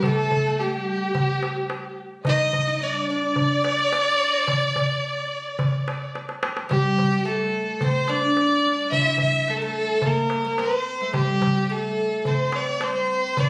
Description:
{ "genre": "Turkish makam ensemble", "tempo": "108 BPM", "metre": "4/4", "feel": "straight", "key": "A makam kurdi from 6.7 s", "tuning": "A4 = 435 Hz", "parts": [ { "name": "rich violin", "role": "melody", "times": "0.0-13.5 s", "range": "G4 to E5", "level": "-26 LUFS", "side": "equal", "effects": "none" }, { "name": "dark studio violin section", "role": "second line", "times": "0.0-6.1 s", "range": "G4 to Eb5", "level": "-31 LUFS", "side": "equal", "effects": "none" }, { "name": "oud", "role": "second line", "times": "0.0-13.5 s", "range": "G3 to F4", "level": "-30 LUFS", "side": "equal", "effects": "none" }, { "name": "darbuka", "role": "percussion", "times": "0.0-13.5 s", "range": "none", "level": "-28 LUFS", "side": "equal", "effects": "none" } ], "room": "moderate spring reverb, RT60 1.8 s", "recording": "recorded on a phone in the room, studio reverb, compression", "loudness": "-23 LUFS", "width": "mono", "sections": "0.0-6.7 A section; 6.7-13.5 B section", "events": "drum fill 6.1-6.7", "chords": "none", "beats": "| 0.04 0.59 1.15 1.70 | 2.26 2.81 3.37 3.92 | 4.48 5.03 5.59 6.14 | 6.70 7.26 7.81 8.37 | 8.92 9.48 10.04 10.59 | 11.15 11.70 12.26 12.82 | 13.37" }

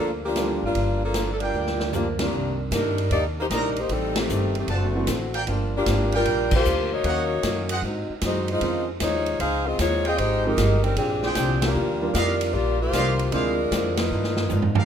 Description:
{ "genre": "jazz, big band swing", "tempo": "153 BPM", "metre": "4/4", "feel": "swing 66% on 8ths", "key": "C minor", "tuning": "A4 = 438 Hz", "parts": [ { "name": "warm saxophone section", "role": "melody", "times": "0.0-14.8 s", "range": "D3 to F5", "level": "-24 LUFS", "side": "left 1 dB", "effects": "none" }, { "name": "picked acoustic archtop guitar", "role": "accompaniment", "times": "0.0-14.8 s", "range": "G2 to G4", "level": "-34 LUFS", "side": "left 2 dB", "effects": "none" }, { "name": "upright bass", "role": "bass", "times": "0.0-14.8 s", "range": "F#1 to Ab2", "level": "-26 LUFS", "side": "equal", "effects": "none" }, { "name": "warm baby grand piano", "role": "accompaniment", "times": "0.4-13.6 s", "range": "Eb3 to F5", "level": "-31 LUFS", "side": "right 4 dB", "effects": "none" }, { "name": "swinging big-band drum kit", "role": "drums", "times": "0.4-14.8 s", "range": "crash cymbal, hi-hat, kick drum, ride cymbal, snare drum, toms", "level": "-29 LUFS", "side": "right 1 dB", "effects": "none" }, { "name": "clear trumpet section", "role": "stabs", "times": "1.4-14.8 s", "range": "G4 to Bb5", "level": "-30 LUFS", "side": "right 2 dB", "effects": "none" } ], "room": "light reverb", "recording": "minimal, uncompressed stereo recording", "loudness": "-21 LUFS", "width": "side -8 dB against mid", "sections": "0.0-2.3 A section; 2.3-14.8 B section", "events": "drum fill 1.5-2.3, 14.1-14.8; band accent 2.1, 4.1, 6.5, 11.6, 13.9", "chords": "0.0 Gm7; 2.3 Cm9; 3.9 Am7b5; 4.7 D7; 5.5 Gm7; 7.0 Ebm7; 7.8 Ab7; 8.6 Dbmaj9; 10.2 Fm9; 11.0 Bb13; 11.8 Ebmaj9; 13.3 Dm7b5; 14.1 G7alt", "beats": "0.36 | 0.76 1.15 1.54 1.94 | 2.33 2.72 3.12 3.51 | 3.90 4.29 4.69 5.08 | 5.48 5.87 6.26 6.66 | 7.05 7.44 7.83 8.23 | 8.62 9.01 9.41 9.80 | 10.19 10.58 10.98 11.37 | 11.76 12.15 12.54 12.94 | 13.33 13.72 14.11 14.51" }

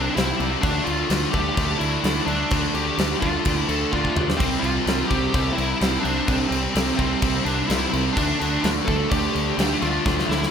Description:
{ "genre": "hard rock", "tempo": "127 BPM", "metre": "4/4", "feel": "straight", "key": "D minor", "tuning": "A4 = 440 Hz", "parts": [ { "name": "high-gain lead guitar", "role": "melody", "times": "0.0-10.5 s", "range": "C4 to A4", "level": "-26 LUFS", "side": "equal", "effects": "distortion, slapback echo" }, { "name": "high-gain distorted guitar", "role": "riff", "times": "0.0-10.5 s", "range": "C3 to D4", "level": "-27 LUFS", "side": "left 12 dB", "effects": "distortion" }, { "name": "overdriven semi-hollow guitar", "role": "riff", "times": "0.0-10.5 s", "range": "C3 to D4", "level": "-28 LUFS", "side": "right 11 dB", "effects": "none" }, { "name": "growling fingered electric bass", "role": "bass", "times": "0.0-10.4 s", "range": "C2 to D2", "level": "-27 LUFS", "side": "equal", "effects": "overdrive" }, { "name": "big rock drum kit", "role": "drums", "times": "0.2-10.5 s", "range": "crash cymbal, kick drum, snare drum, toms", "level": "-24 LUFS", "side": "left 1 dB", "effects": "none" }, { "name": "sludgy distorted guitar", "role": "riff", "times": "4.4-10.5 s", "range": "C3 to D4", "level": "-30 LUFS", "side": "equal", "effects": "overdrive" } ], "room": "small room ambience", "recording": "none", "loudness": "-19 LUFS", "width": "side -7 dB against mid", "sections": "0.0-10.5 A section", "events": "drum fill 3.9-4.4, 10.1-10.5", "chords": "0.0 C; 0.6 Dm; 4.4 C; 8.2 D5", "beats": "0.16 | 0.63 1.10 1.57 2.04 | 2.52 2.99 3.46 3.93 | 4.40 4.87 5.34 5.81 | 6.28 6.75 7.23 7.70 | 8.17 8.64 9.12 9.59 | 10.06" }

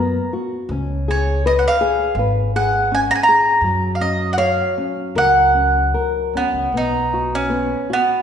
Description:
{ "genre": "fado-style ballad", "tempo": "75-83 BPM", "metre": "4/4", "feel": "rubato", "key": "F# major", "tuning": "A4 = 439 Hz", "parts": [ { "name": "mandolin", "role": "melody", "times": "0.0-8.2 s", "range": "B3 to A#5", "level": "-17 LUFS", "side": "right 1 dB", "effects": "none" }, { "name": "nylon-string guitar", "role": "accompaniment", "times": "0.0-8.2 s", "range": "F#3 to C#5", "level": "-22 LUFS", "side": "left 3 dB", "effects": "none" }, { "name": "upright bass", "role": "bass", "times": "0.0-7.7 s", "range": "G#1 to F#2", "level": "-23 LUFS", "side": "equal", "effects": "none" } ], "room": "wet recital hall reverb, RT60 1.6 s", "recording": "recorded in a church or concert hall, nothing above 10.9 kHz", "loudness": "-15 LUFS", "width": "side -8 dB against mid", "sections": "0.0-6.7 A section; 6.7-8.2 B section", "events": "none", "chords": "0.0 B5; 0.7 C#5; 3.6 F#; 6.7 B5", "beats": "| 0.70 1.43 2.16 2.89 | 3.63 4.38 5.16 5.94 | 6.73 7.51" }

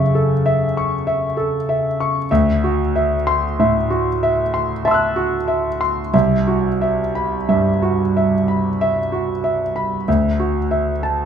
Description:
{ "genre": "classical, impressionist solo piano", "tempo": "44-50 BPM", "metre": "3/4", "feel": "rubato", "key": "unclear", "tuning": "A4 = 436 Hz", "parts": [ { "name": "warm concert grand piano", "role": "solo", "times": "0.0-11.3 s", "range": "C2 to F#6", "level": "-16 LUFS", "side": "equal", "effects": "none" } ], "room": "wet recital hall reverb, RT60 1.7 s", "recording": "minimal, uncompressed stereo recording", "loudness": "-16 LUFS", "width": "side -8 dB against mid", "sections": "0.0-11.3 A section", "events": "none", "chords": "0.0 F#m7; 2.3 D9; 6.1 Cmaj7#11; 10.1 Dadd9", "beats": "1.05 | 2.29 3.57 4.84 | 6.13 7.48 8.79 | 10.07" }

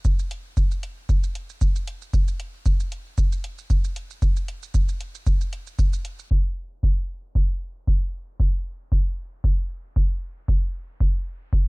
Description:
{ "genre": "techno", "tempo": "115 BPM", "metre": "4/4", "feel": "swing 55% on 16ths", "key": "none", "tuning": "none", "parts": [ { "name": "electronic kick drum", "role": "drums", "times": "0.0-11.6 s", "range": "none", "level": "-21 LUFS", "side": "equal", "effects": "none" }, { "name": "electronic shaker and hi-hat", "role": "drums", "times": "0.0-6.3 s", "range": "none", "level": "-41 LUFS", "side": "right 4 dB", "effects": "low-pass filter on hats, low-pass filter on perc" } ], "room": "little or no reverb", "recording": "dark, warm production, low-pass filter", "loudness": "-22 LUFS", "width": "side -35 dB against mid", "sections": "0.0-6.3 A section; 6.3-11.7 B section", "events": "filter sweep 6.3-11.7", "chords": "none", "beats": "| 0.05 0.57 1.09 1.61 | 2.14 2.66 3.18 3.70 | 4.22 4.74 5.27 5.79 | 6.31 6.83 7.35 7.88 | 8.40 8.92 9.44 9.96 | 10.48 11.01 11.53" }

